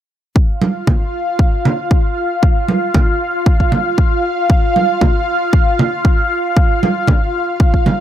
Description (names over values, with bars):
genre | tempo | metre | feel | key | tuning
nu-disco, nu disco | 116 BPM | 4/4 | swing 54% on 16ths | unclear | A4 = 440 Hz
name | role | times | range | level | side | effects
lush unison pad | sustained chords | 0.6-8.0 s | F4 to F5 | -17 LUFS | equal | chorus, phaser, sidechain pumping
electronic kick drum | drums | 0.4-7.8 s | none | -13 LUFS | equal | none
congas | percussion | 0.6-8.0 s | none | -16 LUFS | right 3 dB | none
room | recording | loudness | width
small room ambience | none | -12 LUFS | side -11 dB against mid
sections
0.4-8.0 A section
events
none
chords
none